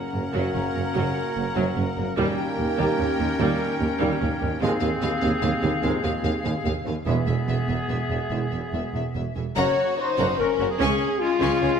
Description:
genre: cinematic.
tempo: 147 BPM.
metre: 3/4.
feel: straight.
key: Gb lydian.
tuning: A4 = 439 Hz.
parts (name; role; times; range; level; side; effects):
warm symphonic violin section; melody; 0.0-11.8 s; Ab3 to G5; -35 LUFS; left 4 dB; none.
clear clarinet; second line; 0.0-11.7 s; B3 to Gb4; -33 LUFS; left 2 dB; none.
rich symphonic violin section; second line; 0.0-11.7 s; Ab4 to Db6; -36 LUFS; left 3 dB; none.
small flute group; second line; 0.0-11.7 s; E5 to Bb5; -35 LUFS; left 6 dB; none.
warm cor anglais; second line; 0.0-11.8 s; F4 to Db5; -33 LUFS; right 2 dB; none.
mellow French horn section; sustained chords; 0.0-11.8 s; B3 to Db5; -28 LUFS; left 6 dB; none.
warm trombone section; sustained chords; 0.0-10.9 s; Db3 to Db4; -33 LUFS; right 4 dB; none.
warm symphonic viola section; accompaniment; 0.1-11.7 s; Gb3 to Bb4; -32 LUFS; right 1 dB; none.
warm studio double bass section; bass; 0.1-11.7 s; E1 to Eb2; -29 LUFS; right 4 dB; none.
warm symphonic cello section; bass; 0.1-11.7 s; Eb2 to Db3; -30 LUFS; right 2 dB; none.
warm tuba; bass; 0.1-11.7 s; E1 to Eb2; -31 LUFS; right 3 dB; none.
room: wet scoring stage reverb, RT60 1.6 s.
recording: none.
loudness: -22 LUFS.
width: side -7 dB against mid.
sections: 0.0-9.6 A section; 9.6-11.8 B section.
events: build-up 0.0-9.6.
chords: 0.0 Gb; 2.2 Eb7; 4.6 Ab6/Eb; 7.1 E; 9.6 Gb; 10.8 Db.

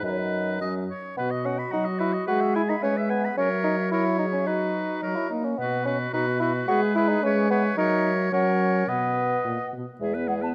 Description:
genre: quick classical-period movement for wind quintet.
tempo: 108 BPM.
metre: 2/4.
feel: straight.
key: B major.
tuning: A4 = 441 Hz.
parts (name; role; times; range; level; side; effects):
mellow hollow silver concert flute; melody; 0.0-10.5 s; C#5 to A5; -37 LUFS; equal; none.
clear oboe; second line; 0.0-9.7 s; A#4 to B5; -33 LUFS; equal; none.
bright clarinet; accompaniment; 0.0-10.5 s; C#4 to B4; -35 LUFS; equal; none.
mellow French horn; accompaniment; 0.0-10.5 s; A#2 to B3; -30 LUFS; equal; none.
mellow bassoon; bass; 0.0-10.5 s; E2 to F#4; -29 LUFS; equal; none.
room: moderate scoring stage reverb, RT60 1.6 s.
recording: none.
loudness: -25 LUFS.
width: mono.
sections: 0.0-1.2 A section; 1.2-10.0 B section.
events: none.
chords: 0.0 B/F#; 0.6 F#5; 1.2 B; 2.3 E/G#; 2.8 C#m7/G#; 3.4 F#7; 4.5 B/F#; 5.0 F#; 5.6 B; 6.7 E/G#; 7.2 C#m7/G#; 7.8 F#7; 8.3 F#; 8.9 B; 10.0 E.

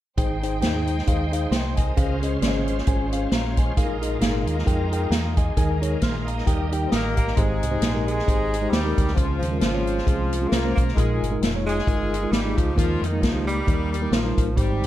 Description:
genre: uptempo gospel.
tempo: 133 BPM.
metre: 4/4.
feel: swing 57% on 8ths.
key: Ab major.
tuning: A4 = 440 Hz.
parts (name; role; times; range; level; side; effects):
mellow tine electric piano; accompaniment; 0.2-14.9 s; Ab2 to F6; -27 LUFS; left 1 dB; medium stereo tremolo.
bright tonewheel organ; sustained chords; 0.2-7.4 s; G3 to G5; -33 LUFS; right 2 dB; fast rotary speaker, overdrive, chorus vibrato.
warm studio string section; sustained chords; 0.2-7.4 s; G3 to G5; -36 LUFS; equal; none.
deep dub fingered electric bass; bass; 0.2-14.9 s; F1 to F2; -26 LUFS; equal; none.
swinging big-band drum kit; drums; 0.2-14.9 s; hi-hat, kick drum, snare drum; -23 LUFS; equal; none.
breathy tenor saxophone; melody; 6.9-14.9 s; Eb3 to C4; -30 LUFS; right 2 dB; none.
warm horn section; melody; 6.9-14.9 s; Eb3 to Bb4; -30 LUFS; left 3 dB; none.
room: light reverb.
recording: dark, warm production.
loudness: -20 LUFS.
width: side -13 dB against mid.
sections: 0.2-7.4 A section; 7.4-14.9 B section.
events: none.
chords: 0.2 Abmaj7; 2.0 Dbmaj7; 3.8 Bb7sus4; 5.6 Ebsus4; 6.5 Eb; 7.4 Abmaj7; 9.2 Dbmaj7; 11.0 Bb7sus4; 12.8 Ebsus4; 13.7 Eb.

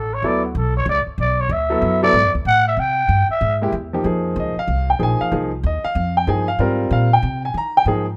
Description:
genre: modal jazz.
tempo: 189 BPM.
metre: 4/4.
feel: swing 64% on 8ths.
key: F minor from 4.0 s.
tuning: A4 = 440 Hz.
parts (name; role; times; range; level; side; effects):
growling trumpet; melody; 0.0-3.6 s; F#4 to G5; -20 LUFS; equal; plate reverb.
upright bass; bass; 0.0-8.2 s; A1 to Eb3; -24 LUFS; equal; none.
warm concert grand piano; accompaniment; 0.2-8.1 s; E#3 to Bb5; -21 LUFS; equal; plate reverb.
room: moderate small room ambience, RT60 0.5 s.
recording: rough home demo mix.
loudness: -19 LUFS.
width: mono.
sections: 0.0-4.0 A section; 4.0-8.2 A section.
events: trumpet solo 0.0-4.0.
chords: 0.0 Bm11; 2.8 C7b13; 4.0 Fm11.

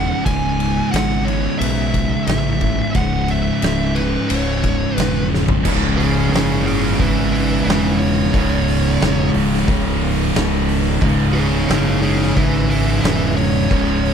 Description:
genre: stoner and doom metal.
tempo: 89 BPM.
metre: 4/4.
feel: straight.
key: C# minor.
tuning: A4 = 440 Hz.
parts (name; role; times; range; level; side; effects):
fuzz lead guitar; melody; 0.0-14.1 s; G#4 to G#5; -24 LUFS; right 3 dB; distortion, slapback echo.
ensemble organ-string; sustained chords; 0.0-14.1 s; C#3 to G#3; -32 LUFS; equal; none.
thick fuzz guitar; riff; 0.0-14.1 s; C#2 to C#3; -22 LUFS; left 10 dB; distortion.
thick fuzz guitar; riff; 0.0-14.1 s; C#2 to C#3; -22 LUFS; right 10 dB; distortion.
growling fingered electric bass; bass; 0.0-14.1 s; C#1 to B1; -22 LUFS; equal; overdrive.
oversized low-tuned drum kit; drums; 0.3-14.1 s; crash cymbal, hi-hat, kick drum, ride cymbal, snare drum, toms; -22 LUFS; equal; none.
tight distorted guitar; riff; 5.6-14.1 s; C#2 to C#3; -23 LUFS; right 1 dB; distortion.
room: little or no reverb.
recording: none.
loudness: -15 LUFS.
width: side -7 dB against mid.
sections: 0.0-5.6 A section; 5.6-14.1 B section.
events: drum fill 5.3-5.6; lead electric guitar solo 5.6-14.1.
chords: 0.0 C#m.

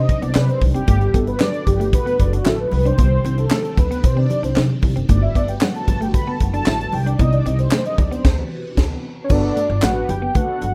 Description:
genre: early-eighties boogie funk.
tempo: 114 BPM.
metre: 4/4.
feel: straight.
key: G major.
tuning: A4 = 440 Hz.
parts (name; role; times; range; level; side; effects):
mellow synth brass; accompaniment; 0.0-10.6 s; B3 to B5; -26 LUFS; equal; chorus.
string machine, full ensemble; sustained chords; 0.0-9.3 s; C3 to G4; -33 LUFS; equal; phaser, ensemble chorus.
clean electric guitar; riff; 0.0-10.5 s; G3 to E4; -30 LUFS; equal; analog chorus.
tight funk drum kit; drums; 0.1-10.7 s; crash cymbal, handclaps, hi-hat, kick drum, snare drum; -21 LUFS; equal; none.
congas; percussion; 0.1-10.7 s; none; -32 LUFS; equal; none.
upright bass; bass; 0.2-10.7 s; F#1 to C3; -22 LUFS; equal; none.
fat analog lead; melody; 9.2-10.7 s; C#5 to G5; -24 LUFS; equal; chorus.
room: little or no reverb.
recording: rough home demo mix.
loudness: -18 LUFS.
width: mono.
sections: 0.0-9.3 A section; 9.3-10.7 B section.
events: analog polysynth solo 0.0-9.3; band accent 8.2-9.3.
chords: 0.0 Cmadd9; 0.9 Gmaj9; 2.7 Cmadd9; 5.1 Gmaj9; 6.9 Cmadd9; 8.2 D13; 9.3 Gmaj9.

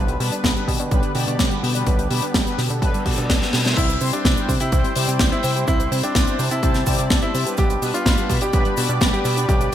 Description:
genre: italo disco.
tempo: 126 BPM.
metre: 4/4.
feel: straight.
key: C major.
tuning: A4 = 440 Hz.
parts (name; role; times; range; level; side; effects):
lush unison pad; sustained chords; 0.0-9.7 s; D3 to B5; -29 LUFS; right 1 dB; chorus.
soft round pluck; arpeggios; 0.0-9.7 s; G3 to C5; -31 LUFS; right 4 dB; chorus, ping-pong delay.
analog synth brass; stabs; 0.0-9.7 s; G3 to D5; -27 LUFS; left 2 dB; chorus, ping-pong delay.
chorused synth bass; bass; 0.0-9.7 s; B1 to C3; -24 LUFS; equal; none.
tight funk drum kit; drums; 0.1-9.7 s; cabasa, crash cymbal, hi-hat, snare drum; -23 LUFS; left 1 dB; studio reverb, gated reverb.
electronic kick drum; drums; 0.4-9.6 s; none; -21 LUFS; equal; studio reverb.
reverse cymbal; sound effects; 3.0-3.8 s; none; -29 LUFS; left 1 dB; none.
bright concert grand piano; melody; 3.8-9.7 s; D4 to G4; -26 LUFS; equal; digital delay.
room: light reverb, small room ambience.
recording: bright 1980s-style digital production.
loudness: -17 LUFS.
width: side -11 dB against mid.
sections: 0.0-3.8 A section; 3.8-9.7 B section.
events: reverse cymbal 3.0-3.8; drum fill 3.4-3.8.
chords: 0.0 G/B; 3.8 C; 7.6 G/B.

